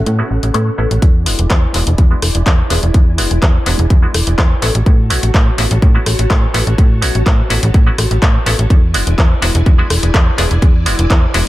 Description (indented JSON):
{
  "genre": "filtered disco house",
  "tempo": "125 BPM",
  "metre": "4/4",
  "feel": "straight",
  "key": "E mixolydian",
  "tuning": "A4 = 440 Hz",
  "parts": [
    { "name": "string machine, full ensemble", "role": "sustained chords", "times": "0.0-11.5 s", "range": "C#4 to A5", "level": "-24 LUFS", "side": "left 1 dB", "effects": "ensemble chorus, sidechain pumping, low-pass filter" },
    { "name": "slap-like FM bass", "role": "bass", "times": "0.0-11.4 s", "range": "E1 to A2", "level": "-15 LUFS", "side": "equal", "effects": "sidechain pumping, low-pass filter" },
    { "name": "house drum kit", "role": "drums", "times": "0.1-11.4 s", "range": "handclaps, hi-hat, rim click", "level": "-19 LUFS", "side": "left 1 dB", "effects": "high-pass filter on hats, high-pass filter on snare, analog delay" },
    { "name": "muted clav", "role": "accompaniment", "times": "0.2-11.4 s", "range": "G#3 to A4", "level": "-22 LUFS", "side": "equal", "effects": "phaser, sidechain pumping, low-pass filter, analog delay" },
    { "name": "electronic kick drum", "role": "drums", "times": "1.0-11.2 s", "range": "none", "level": "-10 LUFS", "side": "equal", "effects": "none" }
  ],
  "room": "light reverb, digital ambience",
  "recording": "echo-heavy mix",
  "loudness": "-10 LUFS",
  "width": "side -16 dB against mid",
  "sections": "0.0-1.0 A section; 1.0-11.5 B section",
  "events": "build-up 1.0-11.5; filter sweep 1.0-11.5",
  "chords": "0.0 A6; 1.0 E7; 4.6 A6; 8.7 E7"
}